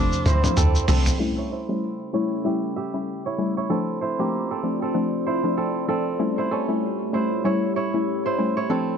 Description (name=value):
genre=afrobeats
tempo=96 BPM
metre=4/4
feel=swing 58% on 16ths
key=unclear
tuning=A4 = 440 Hz
part: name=warm tenor saxophone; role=melody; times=0.0-0.5 s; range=D4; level=-33 LUFS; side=left 1 dB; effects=ping-pong delay
part: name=soft round pluck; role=accompaniment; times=0.0-9.0 s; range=F3 to E4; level=-26 LUFS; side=left 3 dB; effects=chorus, low-pass filter
part: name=deep dark ambient pad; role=sustained chords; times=0.0-9.0 s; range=A3 to D6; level=-29 LUFS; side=equal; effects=chorus, built-in reverb, low-pass filter
part: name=kora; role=riff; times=0.0-9.0 s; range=Bb3 to E5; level=-27 LUFS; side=right 6 dB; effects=low-pass filter, ping-pong delay
part: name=deep log drum bass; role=bass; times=0.0-1.1 s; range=C2 to D2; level=-20 LUFS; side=equal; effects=none
part: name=trip hop sampler-style drum kit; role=drums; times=0.1-1.2 s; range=hi-hat, shaker, toms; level=-24 LUFS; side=equal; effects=none
room=moderate small room reverb, RT60 0.5 s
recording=none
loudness=-21 LUFS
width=side -7 dB against mid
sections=0.0-1.2 A section; 1.2-9.0 B section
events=drum fill 0.0-1.2; filter sweep 1.2-9.0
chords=0.0 Dm7; 1.2 A7; 3.7 Dm7; 6.2 A7